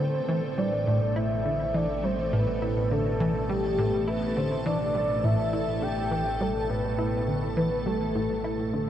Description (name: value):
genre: ambient, sequencer-driven space music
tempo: 103 BPM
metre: 4/4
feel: straight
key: unclear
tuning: A4 = 441 Hz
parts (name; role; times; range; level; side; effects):
- soft octave-layered synth lead; melody; 0.0-8.7 s; G4 to G5; -29 LUFS; equal; chorus, tremolo, tape echo
- evolving wavetable pad; sustained chords; 0.0-8.9 s; A2 to A5; -31 LUFS; equal; ensemble chorus, built-in reverb, phaser
- plucky analog bass; riff; 0.0-8.9 s; A2 to E4; -29 LUFS; equal; lush chorus, tape echo
- analog drone; bass; 0.8-8.9 s; A1; -35 LUFS; equal; chorus
room: wet huge ambient reverb, RT60 7.4 s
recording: worn, warbling old tape, cassette tape, warbly pitch drift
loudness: -24 LUFS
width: side -10 dB against mid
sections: 0.0-8.9 A section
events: none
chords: 0.0 Am7